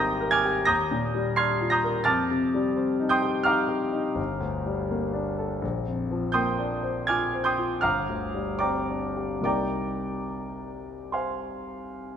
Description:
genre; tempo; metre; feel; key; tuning
classical, impressionist solo piano; 70-87 BPM; 5/4; rubato; C minor; A4 = 440 Hz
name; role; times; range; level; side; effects
clear concert grand piano; solo; 0.0-12.2 s; G1 to C7; -24 LUFS; equal; none
room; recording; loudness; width
wet concert hall reverb, RT60 2.1 s; none; -24 LUFS; side -8 dB against mid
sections
0.0-12.2 A section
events
none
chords
0.0 Abmaj9; 0.7 Ebmaj9; 2.1 F9; 4.2 Gm9; 5.6 Bb69; 7.8 G7sus4; 9.4 Cm7

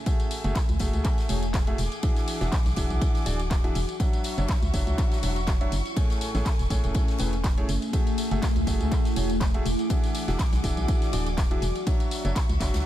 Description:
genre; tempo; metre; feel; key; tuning
piano house; 122 BPM; 4/4; swing 55% on 16ths; unclear; A4 = 445 Hz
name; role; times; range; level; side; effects
warm studio violin section; sustained chords; 0.0-12.9 s; A3 to D6; -38 LUFS; left 1 dB; sidechain pumping
deep dark ambient pad; texture; 0.0-12.9 s; A3 to F#5; -33 LUFS; left 1 dB; chorus, built-in reverb, sidechain pumping
clear baby grand piano; riff; 0.1-12.9 s; A2 to E5; -33 LUFS; right 1 dB; sidechain pumping, digital delay
big rock drum kit; drums; 0.1-12.8 s; ride cymbal, snare drum; -42 LUFS; left 2 dB; high-pass filter on cymbals, high-pass filter on snare, high-pass filter on room
electronic kick drum; drums; 0.1-12.7 s; none; -25 LUFS; equal; none
house drum kit; drums; 0.1-12.8 s; handclaps, hi-hat, tambourine; -36 LUFS; left 2 dB; none
organ-like FM bass; bass; 0.4-12.8 s; D1 to C#2; -27 LUFS; equal; sidechain pumping
room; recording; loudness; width
small room ambience; none; -23 LUFS; side -13 dB against mid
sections
0.0-12.9 A section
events
none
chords
0.0 F#m9; 1.8 E9; 4.0 Dmaj9/F#; 6.0 Amaj7; 7.7 F#m9; 9.7 E9; 11.9 Dmaj9

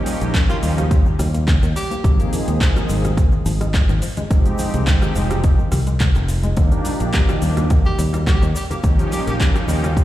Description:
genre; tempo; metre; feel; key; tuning
nu-disco, nu disco; 106 BPM; 4/4; swing 53% on 16ths; Eb major; A4 = 438 Hz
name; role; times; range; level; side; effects
warm analog pad; accompaniment; 0.0-9.9 s; F3 to Ab4; -25 LUFS; right 1 dB; chorus, sidechain pumping, ping-pong delay
analog pluck; arpeggios; 0.1-10.0 s; C3 to Bb3; -28 LUFS; left 3 dB; chorus, vintage 12-bit sampler grit, sidechain pumping, ping-pong delay
pop drum kit; drums; 0.1-10.0 s; handclaps, hi-hat, rim click, shaker; -28 LUFS; equal; overdrive
cabasa, congas and bongos; percussion; 0.1-10.0 s; none; -30 LUFS; left 1 dB; none
fingered electric bass; bass; 0.2-10.0 s; F1 to Eb2; -20 LUFS; equal; none
electronic kick drum; drums; 0.3-10.0 s; none; -16 LUFS; equal; overdrive
bright tenor saxophone; melody; 0.5-2.1, 7.9-9.4 s; F4 to G4; -29 LUFS; right 1 dB; ping-pong delay
room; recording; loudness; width
little or no reverb; played on a big sound system in a bare room, large studio reverb; -15 LUFS; side -14 dB against mid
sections
0.0-10.0 A section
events
none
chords
0.0 Eb7; 2.0 Ab6; 4.3 Fm7; 6.6 Ebmaj7; 8.8 Eb7

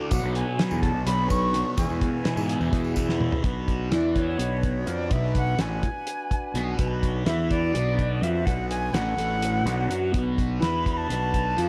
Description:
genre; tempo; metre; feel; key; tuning
psychedelic rock; 251 BPM (eighths); 7/8; straight; B dorian; A4 = 440 Hz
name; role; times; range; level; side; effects
tonewheel organ; sustained chords; 0.0-11.7 s; D4 to F#5; -40 LUFS; equal; overdrive, slow rotary speaker
thick fuzz guitar; riff; 0.0-11.7 s; E2 to F#4; -30 LUFS; equal; distortion, phaser
jazz flute; melody; 0.1-11.7 s; C#5 to C#6; -32 LUFS; equal; diffuse ambient delay
fuzz fingered electric bass; bass; 0.1-11.7 s; A1 to G#2; -31 LUFS; equal; overdrive
cloth-damped thuddy drum kit; drums; 0.1-11.7 s; hi-hat, kick drum, snare drum, toms; -30 LUFS; equal; none
tambourine; percussion; 0.1-3.1 s; none; -48 LUFS; equal; none
room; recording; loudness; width
light reverb; none; -25 LUFS; mono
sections
0.0-3.4 A section; 3.4-11.7 B section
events
drum fill 3.1-3.4; flute solo 3.4-11.7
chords
0.1 Bmadd9; 1.8 E; 3.4 Bm

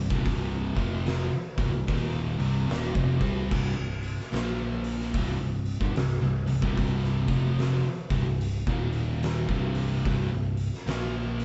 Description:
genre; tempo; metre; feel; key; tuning
stoner and doom metal; 73 BPM; 4/4; swing 63% on 8ths; C minor; A4 = 442 Hz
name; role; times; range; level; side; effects
overdriven electric guitar; riff; 0.0-11.4 s; C2 to C4; -36 LUFS; equal; none
thick fuzz guitar; riff; 0.0-11.4 s; C2 to C4; -36 LUFS; equal; none
thick fuzz guitar; riff; 0.0-11.4 s; C2 to C4; -34 LUFS; equal; distortion
picked electric bass; bass; 0.0-11.4 s; C1 to C2; -33 LUFS; equal; overdrive
oversized low-tuned drum kit; drums; 0.1-11.4 s; crash cymbal, hi-hat, kick drum, snare drum; -33 LUFS; equal; none
room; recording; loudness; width
moderate studio reverb, RT60 0.7 s; band playing live in one room, nothing above 7.9 kHz; -28 LUFS; mono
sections
0.0-11.4 A section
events
none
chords
0.0 Cm; 4.3 Bb5; 5.1 C5; 8.6 Eb5; 9.4 C5; 10.9 Bb5

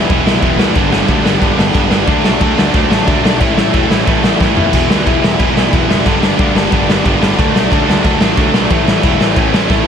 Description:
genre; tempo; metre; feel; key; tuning
punk rock; 181 BPM; 4/4; straight; A major; A4 = 439 Hz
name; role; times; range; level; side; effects
distorted electric guitar; riff; 0.0-9.9 s; E2 to D4; -17 LUFS; right 13 dB; distortion
high-gain distorted guitar; riff; 0.0-9.9 s; G2 to E4; -19 LUFS; right 2 dB; distortion
overdriven semi-hollow guitar; riff; 0.0-9.9 s; G2 to E4; -18 LUFS; left 18 dB; none
fuzz picked electric bass; bass; 0.0-9.8 s; E1 to D#2; -19 LUFS; equal; overdrive
raw garage drum kit; drums; 0.1-9.8 s; crash cymbal, kick drum, snare drum, splash cymbal, toms; -14 LUFS; equal; none
room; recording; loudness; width
light reverb; none; -10 LUFS; side -7 dB against mid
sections
0.0-9.9 A section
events
drum fill 4.4-4.7, 9.7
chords
0.0 E; 0.8 G; 2.1 D; 3.4 A; 4.7 E; 6.1 G; 7.4 D; 8.7 A

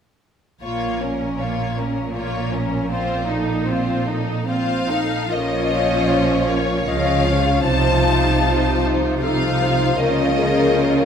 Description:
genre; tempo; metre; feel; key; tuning
classical; 77 BPM; 3/4; uneven beats, rubato; Bb minor; A4 = 440 Hz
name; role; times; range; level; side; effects
rich studio violin section; melody; 0.6-11.1 s; A4 to A5; -24 LUFS; left 5 dB; none
rich studio violin section; second line; 0.6-11.1 s; Db4 to Db5; -24 LUFS; left 3 dB; none
rich studio viola section; accompaniment; 0.6-11.1 s; F3 to Eb4; -25 LUFS; right 2 dB; none
warm studio cello section; bass; 0.6-11.1 s; Bb2 to Db3; -26 LUFS; right 4 dB; none
warm studio double bass section; bass; 0.6-11.1 s; Bb1 to Db2; -24 LUFS; right 3 dB; none
mellow clarinet; second line; 5.3-11.1 s; F4 to Eb5; -26 LUFS; equal; none
dark French horn section; sustained chords; 5.3-11.1 s; F3 to Eb4; -24 LUFS; left 3 dB; none
room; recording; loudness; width
wet scoring stage reverb, RT60 1.7 s; none; -17 LUFS; side -7 dB against mid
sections
0.6-5.3 A section; 5.3-11.1 B section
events
none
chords
0.6 Bbm; 2.9 F7/Bb; 5.3 Bbm; 7.7 F7/C; 10.0 Bbm/Db

